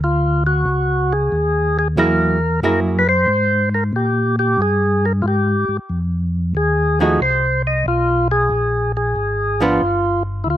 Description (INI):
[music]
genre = soul jazz organ trio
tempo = 92 BPM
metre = 4/4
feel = swing 67% on 8ths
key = unclear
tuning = A4 = 436 Hz
[part]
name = percussive tonewheel organ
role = melody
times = 0.0-10.6 s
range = E4 to Eb5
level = -18 LUFS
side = equal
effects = slow rotary speaker, slapback echo
[part]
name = mellow tonewheel organ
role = bass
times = 0.0-10.6 s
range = G1 to Bb2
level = -19 LUFS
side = equal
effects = chorus vibrato, slow rotary speaker
[part]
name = archtop guitar, miked and amplified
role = accompaniment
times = 2.0-3.0, 7.0-9.8 s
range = F3 to Ab4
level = -18 LUFS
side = right 3 dB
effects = none
[sound]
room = little or no reverb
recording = recorded outdoors, with no room sound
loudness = -15 LUFS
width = side -12 dB against mid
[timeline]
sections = 0.0-10.6 A section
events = none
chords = 0.0 N.C.; 0.7 Gb9; 3.3 Absus2; 5.9 F7(no3); 8.5 Bb5; 9.8 G5